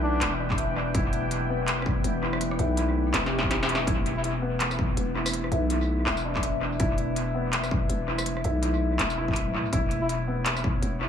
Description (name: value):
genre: half-time drum and bass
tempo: 164 BPM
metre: 4/4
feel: swing 58% on 16ths, half-time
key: unclear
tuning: A4 = 440 Hz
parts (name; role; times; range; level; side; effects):
- trumpet with bucket mute; melody; 0.0-0.3, 4.2-4.3, 10.0-10.2 s; D4 to E4; -36 LUFS; left 1 dB; none
- deep dark ambient pad; sustained chords; 0.0-11.1 s; E3 to G5; -32 LUFS; left 1 dB; chorus, built-in reverb, vintage 12-bit sampler grit, sidechain pumping
- felt-muted upright piano; arpeggios; 0.0-11.1 s; B3 to E5; -32 LUFS; equal; dub echo
- growling 808-style bass; bass; 0.0-11.1 s; E1 to B1; -29 LUFS; left 1 dB; none
- industrial drum kit; drums; 0.2-11.1 s; handclaps, hi-hat, rim click, snare drum, tambourine; -30 LUFS; equal; dub echo
- electronic kick drum; drums; 0.5-10.7 s; none; -28 LUFS; equal; none
room: light reverb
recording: echo-heavy mix, small room ambience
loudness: -24 LUFS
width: side -8 dB against mid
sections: 0.0-11.1 A section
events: drum fill 3.1-3.9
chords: 0.0 E5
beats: 0.21 0.58 | 0.95 1.31 1.68 2.04 | 2.41 2.77 3.14 3.51 | 3.87 4.24 4.61 4.97 | 5.34 5.70 6.07 6.43 | 6.80 7.17 7.53 7.90 | 8.26 8.63 8.99 9.36 | 9.73 10.09 10.46 10.82